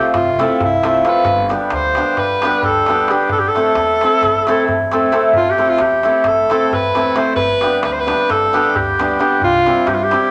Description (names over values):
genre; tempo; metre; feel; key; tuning
balkan folk, Balkan wedding band; 265 BPM (eighths); 9/8; straight; A minor; A4 = 440 Hz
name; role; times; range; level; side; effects
bright alto saxophone; melody; 0.0-10.3 s; E4 to C5; -18 LUFS; equal; none
hammered dulcimer; accompaniment; 0.0-10.3 s; G3 to A4; -18 LUFS; equal; none
darbuka; percussion; 0.1-10.3 s; none; -28 LUFS; equal; none
upright bass; bass; 0.2-10.1 s; F1 to G2; -34 LUFS; equal; none
room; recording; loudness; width
wet studio reverb, RT60 0.8 s; none; -15 LUFS; mono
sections
0.0-5.3 A section; 5.3-10.3 B section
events
none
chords
0.0 F; 1.2 G; 3.3 Am; 7.4 G; 9.4 C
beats
0.11 0.34 0.57 0.79 1.02 | 1.25 1.47 1.70 1.93 2.15 2.38 2.60 2.83 3.06 | 3.28 3.51 3.74 3.96 4.19 4.42 4.64 4.87 5.09 | 5.32 5.55 5.77 6.00 6.22 6.45 6.68 6.90 7.13 | 7.36 7.58 7.81 8.04 8.26 8.49 8.72 8.94 9.17 | 9.40 9.62 9.85 10.08 10.30